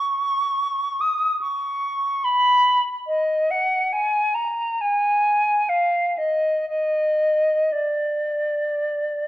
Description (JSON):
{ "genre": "classical, free, expressive piece for unaccompanied flute", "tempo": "57-74 BPM", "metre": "4/4", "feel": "rubato", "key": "Eb minor", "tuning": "A4 = 440 Hz", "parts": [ { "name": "silver concert flute", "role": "solo", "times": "0.0-9.3 s", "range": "D5 to Eb6", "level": "-19 LUFS", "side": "equal", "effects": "none" } ], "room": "moderate recital hall reverb, RT60 1.4 s", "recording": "worn, warbling old tape, cassette tape, warbly pitch drift", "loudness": "-19 LUFS", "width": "side -14 dB against mid", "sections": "0.0-9.3 A section", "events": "none", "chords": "none" }